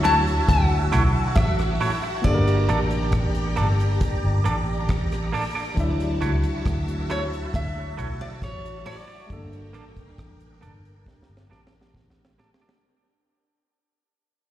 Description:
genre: lovers rock reggae.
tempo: 68 BPM.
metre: 4/4.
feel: straight.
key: unclear.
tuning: A4 = 445 Hz.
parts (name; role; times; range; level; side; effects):
nylon-string guitar; melody; 0.0-11.5 s; C#5 to A5; -28 LUFS; left 2 dB; tape echo, slapback echo.
phased string machine; second line; 0.0-12.8 s; D4 to Bb5; -32 LUFS; equal; ensemble chorus, phaser, dub echo, slapback echo.
mellow tine electric piano; accompaniment; 0.0-12.8 s; E3 to E5; -31 LUFS; left 1 dB; overdrive, slapback echo.
twangy electric guitar; stabs; 0.0-12.7 s; A3 to D5; -30 LUFS; right 4 dB; tremolo, dub echo, slapback echo.
vintage muted fingered electric bass; bass; 0.0-12.4 s; G1 to D2; -23 LUFS; equal; none.
deep reggae drum kit; drums; 0.0-12.9 s; hi-hat, kick drum, rim click, snare drum; -26 LUFS; equal; dub echo.
room: light reverb.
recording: live gig heard through the venue's PA, recital hall reverb.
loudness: -20 LUFS.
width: side -13 dB against mid.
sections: 0.0-12.8 A section.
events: fade-out 0.0-12.8; drum fill 11.1-12.8.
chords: 0.0 Dmaj9; 2.2 Gmadd9; 5.8 Dmaj9; 9.3 Gmadd9.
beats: 0.48 1.36 | 2.24 3.12 4.01 4.89 | 5.77 6.65 7.54 8.42 | 9.30 10.18 11.06 11.94.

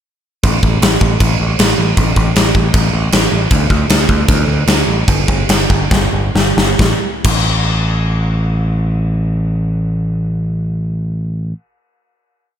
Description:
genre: punk rock.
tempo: 132-156 BPM.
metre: 4/4.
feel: straight.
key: unclear.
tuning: A4 = 438 Hz.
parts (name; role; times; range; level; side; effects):
growling picked electric bass; bass; 0.4-11.5 s; G1 to D2; -15 LUFS; equal; overdrive.
big rock drum kit; drums; 0.4-7.4 s; crash cymbal, kick drum, snare drum; -13 LUFS; equal; none.
room: little or no reverb.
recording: none.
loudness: -12 LUFS.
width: side -9 dB against mid.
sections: 0.4-6.8 riff; 6.8-10.4 final note.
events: slowing down 3.5-6.8; drum fill 5.9-6.8.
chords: none.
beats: | 0.43 0.82 1.20 1.59 | 1.97 2.36 2.74 3.13 | 3.51 3.90 4.29 4.68 | 5.08 5.50 5.92 6.35 | 6.79 7.25 7.70 8.15 | 8.60 9.06 9.51 9.96.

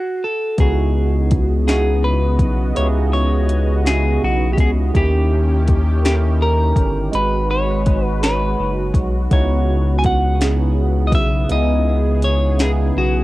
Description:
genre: slow six-eight R&B.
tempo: 55 BPM (dotted quarters).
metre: 6/8.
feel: straight.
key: C# minor.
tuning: A4 = 439 Hz.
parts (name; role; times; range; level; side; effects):
clean electric guitar; melody; 0.0-13.2 s; F#4 to G#5; -22 LUFS; left 1 dB; phaser, cassette tape.
barky tine electric piano; accompaniment; 0.6-13.2 s; C#3 to C#5; -23 LUFS; right 5 dB; overdrive, phaser, cassette tape.
lush unison pad; sustained chords; 0.6-13.2 s; C#3 to D#5; -27 LUFS; equal; chorus, phaser, cassette tape.
saturated sub bass; bass; 0.6-13.2 s; F#1 to D#2; -17 LUFS; equal; none.
smooth R&B drum kit; drums; 0.6-12.8 s; hi-hat, kick drum, snare drum; -18 LUFS; left 1 dB; overdrive, cassette tape.
room: digital ambience.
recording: home recording on cassette.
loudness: -15 LUFS.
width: side -17 dB against mid.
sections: 0.6-13.2 A section.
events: stop 0.0-0.6.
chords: 0.0 F#m; 0.6 C#m11; 4.9 D#7b9; 7.1 G#m7; 9.3 C#m11.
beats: | 0.58 1.68 | 2.77 3.86 | 4.95 6.04 | 7.13 8.22 | 9.31 10.40 | 11.49 12.58.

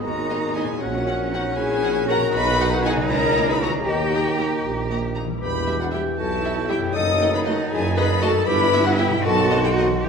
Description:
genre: cinematic, playful, whimsical film cue.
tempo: 78 BPM (dotted quarters).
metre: 6/8.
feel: straight.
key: E minor from 5.4 s.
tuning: A4 = 440 Hz.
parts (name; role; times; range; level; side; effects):
bright clarinet; second line; 0.0-10.1 s; B3 to A4; -31 LUFS; equal; none.
dark chamber violin section; second line; 0.0-10.1 s; E5 to D#6; -28 LUFS; left 3 dB; none.
flute section; second line; 0.0-10.1 s; E5 to D#6; -31 LUFS; equal; none.
mellow oboe; second line; 0.0-10.1 s; D#5 to C6; -33 LUFS; right 2 dB; none.
dark bassoon; accompaniment; 0.0-10.1 s; D#3 to G#3; -31 LUFS; right 2 dB; none.
warm French horn section; sustained chords; 0.0-10.1 s; E4 to D#5; -25 LUFS; left 4 dB; none.
concert harp; arpeggios; 0.0-10.1 s; F#2 to D#5; -30 LUFS; left 8 dB; none.
rich chamber double bass section; bass; 0.0-10.1 s; A#1 to G2; -28 LUFS; right 4 dB; none.
warm tuba; bass; 0.0-10.1 s; E1 to D#2; -28 LUFS; right 4 dB; none.
warm chamber cello section; bass; 0.1-10.1 s; C#4 to G4; -28 LUFS; right 3 dB; none.
dark studio violin section; melody; 0.3-9.9 s; D#5 to A#5; -34 LUFS; left 3 dB; none.
rich chamber viola section; accompaniment; 0.3-9.8 s; G3 to G#4; -33 LUFS; right 3 dB; none.
room: wet scoring stage reverb, RT60 1.7 s.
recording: none.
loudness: -18 LUFS.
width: side -6 dB against mid.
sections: 0.0-10.1 A section.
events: none.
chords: 0.0 G#m; 0.8 F#/A#; 2.3 B; 3.1 A#dim/C#; 3.9 D#; 5.4 Em; 7.0 D#dim/F#; 8.5 Em/G; 9.3 B7b9.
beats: 0.04 | 0.82 1.58 | 2.34 3.10 | 3.88 4.65 | 5.42 6.19 | 6.96 7.72 | 8.49 9.26 | 10.03.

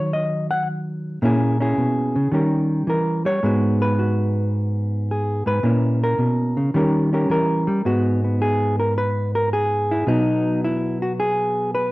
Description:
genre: solo jazz.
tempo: 109 BPM.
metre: 4/4.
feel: swing 68% on 8ths.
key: G# minor.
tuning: A4 = 440 Hz.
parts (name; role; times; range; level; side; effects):
hollow-body jazz guitar; solo; 0.0-11.9 s; G#2 to F#5; -18 LUFS; equal; slapback echo.
room: light reverb.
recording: dry, close 1970s-style studio recording.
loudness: -18 LUFS.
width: side -19 dB against mid.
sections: 0.0-7.8 A section; 7.8-11.9 B section.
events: hollow-body jazz guitar solo 0.0-7.8.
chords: 0.0 D#m; 1.2 A#m7b5; 2.3 D#7; 3.4 G#m7; 5.6 A#dim; 6.7 D#7; 7.8 G#m7; 10.1 B.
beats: 0.11 0.67 | 1.22 1.77 2.32 2.88 | 3.43 3.98 4.53 5.08 | 5.63 6.19 6.74 7.29 | 7.85 8.40 8.95 9.51 | 10.06 10.62 11.17 11.73.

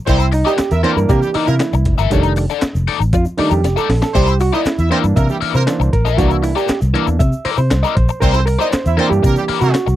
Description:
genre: funk.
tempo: 118 BPM.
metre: 4/4.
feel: straight.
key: C mixolydian.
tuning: A4 = 440 Hz.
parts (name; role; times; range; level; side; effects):
clear horn section; second line; 0.1-9.7 s; G3 to E5; -20 LUFS; right 4 dB; none.
overdriven electric guitar; accompaniment; 0.1-9.9 s; Eb4 to E5; -20 LUFS; left 12 dB; wah.
overdriven clav; stabs; 0.1-10.0 s; Eb3 to E5; -19 LUFS; right 3 dB; none.
vintage muted fingered electric bass; bass; 0.1-10.0 s; F1 to C3; -16 LUFS; equal; none.
breakbeat sampler-style drum kit; drums; 0.1-9.9 s; handclaps, hi-hat, kick drum, snare drum; -19 LUFS; equal; none.
tube shaker; percussion; 0.1-10.0 s; none; -41 LUFS; left 4 dB; none.
room: little or no reverb.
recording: dry, close 1970s-style studio recording.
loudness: -13 LUFS.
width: side -13 dB against mid.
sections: 0.0-10.0 A section.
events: clav solo 0.0-10.0; drum fill 3.6-4.2.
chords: 0.0 C9; 2.1 F13; 4.2 C9.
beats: | 0.08 0.59 1.10 1.61 | 2.12 2.63 3.13 3.64 | 4.15 4.66 5.17 5.68 | 6.19 6.70 7.20 7.71 | 8.22 8.73 9.24 9.75.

